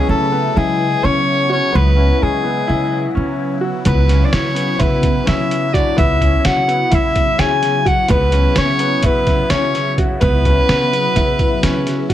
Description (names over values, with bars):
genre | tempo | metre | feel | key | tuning
progressive instrumental, band music in an uneven meter | 255 BPM (eighths) | 9/8 | straight | C# minor | A4 = 440 Hz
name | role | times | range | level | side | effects
clear soprano saxophone | melody | 0.0-12.1 s | G#4 to G#5 | -18 LUFS | left 1 dB | plate reverb
breathy trombone | second line | 0.0-12.1 s | G#3 to G#4 | -25 LUFS | left 3 dB | plate reverb
phased analog pad | accompaniment | 0.0-12.1 s | C#3 to E4 | -23 LUFS | equal | phaser, chorus
clear grand piano | arpeggios | 0.0-12.1 s | B3 to F#4 | -23 LUFS | equal | plate reverb
upright bass | bass | 0.1-12.1 s | C#2 to C#3 | -18 LUFS | right 1 dB | none
trip hop sampler-style drum kit | drums | 3.9-12.1 s | hi-hat, kick drum, snare drum | -19 LUFS | right 1 dB | none
room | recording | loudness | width
light reverb | none | -13 LUFS | side -12 dB against mid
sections
0.0-12.1 A section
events
none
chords
0.0 C#m7